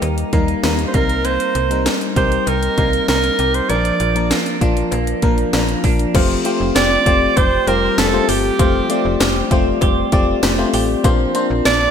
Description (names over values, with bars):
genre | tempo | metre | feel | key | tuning
1980s-style pop | 98 BPM | 4/4 | straight | F major from 6.1 s | A4 = 440 Hz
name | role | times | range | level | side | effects
FM electric piano | accompaniment | 0.0-11.9 s | F3 to D5 | -19 LUFS | left 4 dB | chorus
direct-recorded clean electric guitar | riff | 0.0-11.9 s | F3 to G4 | -24 LUFS | right 5 dB | wide subtle chorus, ping-pong delay
slap-like FM bass | bass | 0.0-11.9 s | F1 to Eb2 | -22 LUFS | equal | none
house drum kit | drums | 0.0-11.8 s | crash cymbal, hi-hat, kick drum, snare drum, tambourine | -19 LUFS | equal | gated reverb
cowbell | percussion | 0.0-11.8 s | none | -33 LUFS | left 8 dB | none
bright alto saxophone | melody | 0.9-11.9 s | G4 to D5 | -18 LUFS | right 4 dB | ping-pong delay
room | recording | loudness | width
moderate lush hall reverb, RT60 2.5 s | bright 1980s-style digital production | -14 LUFS | side -8 dB against mid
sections
0.0-6.1 A section; 6.1-11.9 B section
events
none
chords
0.0 Eb; 0.9 Cm7; 3.7 Bb; 6.1 Fadd9; 11.0 Bbadd9